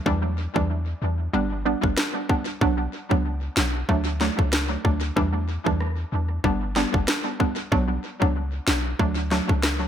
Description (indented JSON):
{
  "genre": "dancehall",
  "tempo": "94 BPM",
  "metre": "4/4",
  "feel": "swing 56% on 16ths",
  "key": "B minor",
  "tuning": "A4 = 440 Hz",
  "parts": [
    { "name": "hollow square pluck", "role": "accompaniment", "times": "0.0-9.5 s", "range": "E3 to D4", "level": "-26 LUFS", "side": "right 1 dB", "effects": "chorus, tape echo" },
    { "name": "clean 808-style bass", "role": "bass", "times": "0.1-9.9 s", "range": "G1 to E2", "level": "-26 LUFS", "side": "equal", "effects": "none" },
    { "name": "island pop drum kit", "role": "drums", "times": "0.1-9.8 s", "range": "kick drum, rim click, snare drum", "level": "-24 LUFS", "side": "equal", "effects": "tape echo" }
  ],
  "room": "light reverb",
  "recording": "echo-heavy mix",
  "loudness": "-22 LUFS",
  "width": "side -9 dB against mid",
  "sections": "0.0-9.9 A section",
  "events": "none",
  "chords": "0.1 Em7; 1.3 G; 2.6 Bm; 3.9 D; 5.2 Em7; 6.4 G; 7.7 Bm; 9.0 D"
}